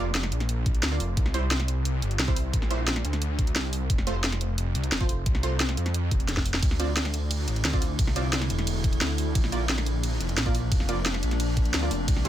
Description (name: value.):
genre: dark technical drum and bass.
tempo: 176 BPM.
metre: 4/4.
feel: straight.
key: unclear.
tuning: A4 = 438 Hz.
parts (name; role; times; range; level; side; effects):
orchestra-hit-like synth stab; stabs; 0.0-12.3 s; G3 to D5; -34 LUFS; right 3 dB; built-in reverb, tape echo.
wide detuned saw bass; bass; 0.0-12.3 s; E1 to F2; -27 LUFS; equal; chorus, overdrive, sidechain pumping.
drum and bass drum kit; drums; 0.1-12.3 s; hi-hat, ride cymbal, snare drum; -29 LUFS; equal; none.
electronic kick drum; drums; 0.7-12.1 s; none; -25 LUFS; equal; none.
metallic inharmonic drone; sustained chords; 7.4-12.3 s; D3 to E4; -34 LUFS; left 1 dB; chorus, built-in reverb, sidechain pumping.
room: digital ambience.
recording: none.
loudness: -24 LUFS.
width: side -12 dB against mid.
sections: 0.0-12.3 A section.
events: drum fill 6.3-6.6.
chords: 0.0 Bb; 1.2 C; 3.9 F; 6.6 Dm7; 9.4 Bb.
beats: 0.15 0.49 0.83 | 1.17 1.51 1.85 2.19 | 2.54 2.88 3.22 3.56 | 3.90 4.24 4.58 4.92 | 5.26 5.60 5.94 6.29 | 6.63 6.97 7.31 7.65 | 7.99 8.33 8.67 9.01 | 9.35 9.69 10.04 10.38 | 10.72 11.06 11.40 11.74 | 12.08.